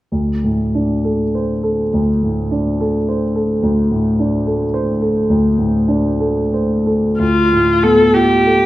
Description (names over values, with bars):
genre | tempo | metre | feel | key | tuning
classical, impressionist duo for viola and grand piano | 58-73 BPM | 4/4 | rubato | D minor | A4 = 436 Hz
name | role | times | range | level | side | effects
warm grand piano | accompaniment | 0.1-8.7 s | D2 to C5 | -14 LUFS | equal | none
rich viola | melody | 7.2-8.7 s | F4 to A4 | -12 LUFS | left 1 dB | none
room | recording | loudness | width
wet recital hall reverb, RT60 1.6 s | none | -13 LUFS | side -15 dB against mid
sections
0.1-7.2 A section; 7.2-8.7 B section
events
none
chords
0.1 D5; 7.2 Dm6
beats
| 0.12 1.04 1.93 2.78 | 3.61 4.45 5.30 6.22 | 7.21 8.14